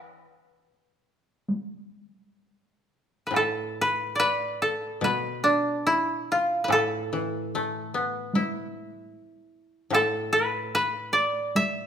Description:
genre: japanese traditional, Japanese chamber music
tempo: 62-76 BPM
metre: 4/4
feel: rubato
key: E in sen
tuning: A4 = 439 Hz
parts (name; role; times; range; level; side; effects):
- koto; melody; 0.0-11.9 s; D4 to E5; -24 LUFS; equal; none
- koto; accompaniment; 0.0-11.9 s; A2 to B4; -33 LUFS; left 3 dB; none
- taiko ensemble; percussion; 1.5-11.7 s; none; -30 LUFS; right 1 dB; none
room: light reverb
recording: minimal, uncompressed stereo recording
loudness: -24 LUFS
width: side -8 dB against mid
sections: 0.0-3.3 A section; 3.3-11.9 B section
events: none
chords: none

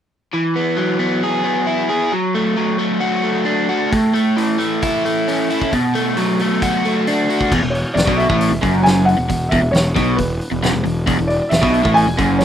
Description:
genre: indie rock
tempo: 134 BPM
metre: 4/4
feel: straight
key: E mixolydian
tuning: A4 = 440 Hz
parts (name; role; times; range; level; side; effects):
- overdriven electric guitar; riff; 0.3-12.4 s; E2 to G#4; -16 LUFS; equal; none
- loose indie drum kit; drums; 3.9-12.4 s; crash cymbal, hi-hat, kick drum, snare drum; -23 LUFS; equal; none
- fuzz picked electric bass; bass; 7.5-12.4 s; E1 to B1; -20 LUFS; equal; overdrive
- warm upright piano; melody; 7.7-12.4 s; B4 to G#5; -19 LUFS; equal; none
room: light reverb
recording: rough home demo mix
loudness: -15 LUFS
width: side -9 dB against mid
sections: 0.3-7.5 A section; 7.5-12.4 B section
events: none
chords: 0.3 Eadd9; 2.1 D/F#; 3.9 A; 5.7 Bm7; 7.5 E5

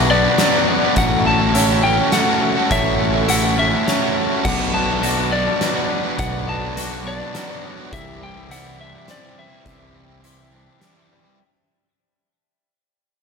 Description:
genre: post-rock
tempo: 104 BPM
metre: 3/4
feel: straight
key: B minor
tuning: A4 = 442 Hz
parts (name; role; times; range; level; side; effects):
- electric slide guitar; melody; 0.0-11.1 s; D5 to A5; -22 LUFS; left 2 dB; tape echo
- rich chamber string section; sustained chords; 0.0-11.4 s; A4 to D6; -31 LUFS; left 1 dB; none
- electric guitar through a small old amp; arpeggios; 0.0-11.4 s; A4 to E5; -29 LUFS; right 7 dB; tape echo
- twangy electric guitar; arpeggios; 0.0-11.4 s; A2 to F#4; -28 LUFS; left 3 dB; spring reverb, tape echo
- raw garage guitar; riff; 0.0-11.4 s; B2 to A4; -24 LUFS; left 12 dB; overdrive
- sludgy distorted guitar; riff; 0.0-11.4 s; B2 to B4; -23 LUFS; right 12 dB; overdrive
- fuzz fingered electric bass; bass; 0.0-10.7 s; A1 to C2; -24 LUFS; left 1 dB; overdrive
- oversized low-tuned drum kit; drums; 0.4-11.0 s; crash cymbal, hi-hat, kick drum, snare drum; -24 LUFS; left 1 dB; none
room: moderate large studio reverb, RT60 0.9 s, studio ambience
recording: none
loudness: -15 LUFS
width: side -5 dB against mid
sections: 0.0-11.4 A section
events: fade-out 0.0-11.4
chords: 0.0 Bm; 1.0 F#m7/A; 4.5 Bm; 7.9 Cadd9

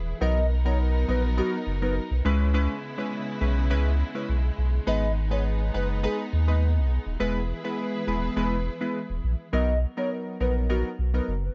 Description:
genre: afrobeats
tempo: 103 BPM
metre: 4/4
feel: straight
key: B major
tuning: A4 = 444 Hz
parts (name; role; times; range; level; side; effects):
- warm studio string section; sustained chords; 0.0-9.5 s; C#3 to B4; -39 LUFS; equal; none
- warm sub bass; bass; 0.0-11.5 s; D#1 to D#2; -27 LUFS; equal; none
- hollow clarinet-like synth lead; melody; 0.2-11.3 s; F#4 to D#5; -34 LUFS; equal; chorus, tape echo
- warm analog keys; accompaniment; 0.2-11.3 s; F#3 to B4; -32 LUFS; equal; chorus, phaser
room: digital ambience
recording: worn, warbling old tape, cassette tape, warbly pitch drift, nothing above 7.6 kHz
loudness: -26 LUFS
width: mono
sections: 0.0-9.5 A section; 9.5-11.5 B section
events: none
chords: 0.2 Bmaj7; 2.2 C#m7; 4.9 G#m; 7.2 E; 9.5 Bmaj7

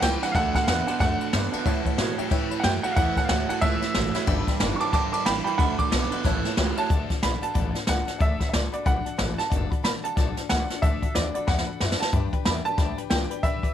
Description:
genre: rockabilly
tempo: 183 BPM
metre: 4/4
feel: swing 61% on 8ths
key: D major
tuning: A4 = 439 Hz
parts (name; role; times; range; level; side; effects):
- warm upright piano; melody; 0.0-13.7 s; D5 to D6; -28 LUFS; right 3 dB; none
- honky-tonk upright piano; accompaniment; 0.0-13.7 s; C#5 to D6; -37 LUFS; left 11 dB; none
- picked steel-string acoustic guitar; accompaniment; 0.0-13.7 s; A2 to B4; -36 LUFS; left 14 dB; none
- electric guitar through a small old amp; riff; 0.0-6.9 s; G2 to B3; -29 LUFS; right 12 dB; none
- upright bass; bass; 0.0-13.7 s; F#1 to B2; -29 LUFS; left 1 dB; none
- jazz brush drum kit; drums; 0.0-13.7 s; hi-hat, kick drum, ride cymbal, snare drum; -25 LUFS; left 1 dB; none
room: little or no reverb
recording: 1960s-style stereo with parts hard left and right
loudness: -22 LUFS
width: side -10 dB against mid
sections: 0.0-6.9 A section; 6.9-13.7 B section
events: upright piano solo 0.0-6.9; drum fill 11.5-12.1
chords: 0.3 D; 1.7 A; 4.3 G; 5.6 D; 6.2 A; 6.9 D; 12.1 G

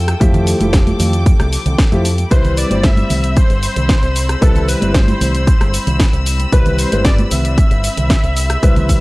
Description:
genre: nu-disco, nu disco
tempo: 114 BPM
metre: 4/4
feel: straight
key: C major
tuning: A4 = 441 Hz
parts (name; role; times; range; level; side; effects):
- dark concert grand piano; accompaniment; 0.0-9.0 s; F3 to C5; -21 LUFS; left 1 dB; sidechain pumping
- clear studio string section; sustained chords; 0.0-9.0 s; C4 to E6; -26 LUFS; left 1 dB; sidechain pumping
- fingered electric bass with an envelope filter; bass; 0.0-8.9 s; F1 to F2; -17 LUFS; equal; none
- house drum kit; drums; 0.1-9.0 s; cabasa, hi-hat, rim click, snare drum; -21 LUFS; equal; none
- electronic kick drum; drums; 0.2-9.0 s; none; -12 LUFS; equal; none
- congas; percussion; 0.3-8.9 s; none; -23 LUFS; right 2 dB; none
- wide unison lead; melody; 2.3-9.0 s; A4 to E5; -23 LUFS; equal; tape echo
room: little or no reverb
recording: dry, gritty hardware recording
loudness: -11 LUFS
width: side -21 dB against mid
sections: 0.0-9.0 A section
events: none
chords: 0.0 Fmaj9; 2.3 Cmaj7

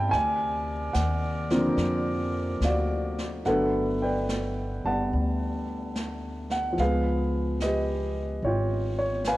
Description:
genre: jazz ballad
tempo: 72 BPM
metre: 4/4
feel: swing 67% on 8ths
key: unclear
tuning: A4 = 445 Hz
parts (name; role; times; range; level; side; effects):
- warm grand piano; accompaniment; 0.0-9.4 s; D3 to B5; -26 LUFS; equal; cassette tape
- mellow saxophone section; sustained chords; 0.0-3.4 s; C3 to D5; -36 LUFS; left 1 dB; cassette tape
- upright bass; bass; 0.0-9.4 s; F#1 to G2; -30 LUFS; equal; none
- jazz brush drum kit; drums; 0.1-9.4 s; brushed snare drum, hi-hat, snare drum; -39 LUFS; right 1 dB; cassette tape
room: light reverb, small room ambience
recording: home recording on cassette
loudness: -25 LUFS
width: side -16 dB against mid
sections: 0.0-3.5 A section; 3.5-9.4 B section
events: none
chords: 0.1 D7alt; 3.5 Gmaj9; 6.8 C#7#11

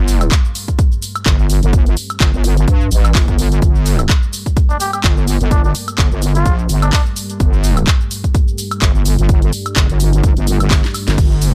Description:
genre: bass house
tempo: 127 BPM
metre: 4/4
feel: swing 56% on 16ths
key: G minor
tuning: A4 = 443 Hz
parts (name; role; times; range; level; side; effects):
- deep dark ambient pad; sustained chords; 0.5-11.5 s; G3 to D5; -30 LUFS; equal; none
- wobble bass; bass; 0.0-11.5 s; G1 to G2; -16 LUFS; equal; chorus, overdrive, sidechain pumping
- house drum kit; drums; 0.1-11.5 s; crash cymbal, handclaps, hi-hat, ride cymbal, shaker, snare drum, woodblock; -23 LUFS; equal; overdrive
- electronic kick drum; drums; 0.3-11.3 s; none; -16 LUFS; equal; overdrive
- trumpet with cup mute; melody; 4.7-7.0 s; D4 to G4; -26 LUFS; equal; delay
room: little or no reverb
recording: none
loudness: -14 LUFS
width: mono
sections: 0.0-11.5 A section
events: drum fill 10.7-11.2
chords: 0.0 Gmadd9

